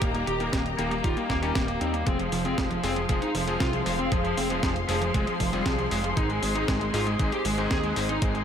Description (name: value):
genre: italo disco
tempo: 117 BPM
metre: 4/4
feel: straight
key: F minor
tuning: A4 = 440 Hz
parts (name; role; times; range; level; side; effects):
- lead guitar through a small cranked amp; melody; 0.0-8.4 s; F3 to Ab4; -29 LUFS; right 1 dB; overdrive, digital delay
- dark symphonic string section; sustained chords; 0.0-8.4 s; G4 to C6; -32 LUFS; left 1 dB; none
- bright electric grand piano; stabs; 0.0-8.4 s; Ab2 to Ab4; -33 LUFS; left 5 dB; none
- fat analog bass; bass; 0.0-8.4 s; Eb1 to Eb2; -31 LUFS; right 1 dB; none
- clean 12-bit digital drum machine; drums; 0.0-8.4 s; hi-hat, snare drum; -33 LUFS; equal; none
- electronic kick drum; drums; 0.0-8.3 s; none; -28 LUFS; equal; none
room: light reverb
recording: none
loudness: -24 LUFS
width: side -8 dB against mid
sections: 0.0-8.4 A section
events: none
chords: 0.0 Eb; 2.1 Fm; 6.2 Ab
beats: | 0.02 0.53 1.04 1.56 | 2.07 2.58 3.09 3.61 | 4.12 4.63 5.15 5.66 | 6.17 6.68 7.20 7.71 | 8.22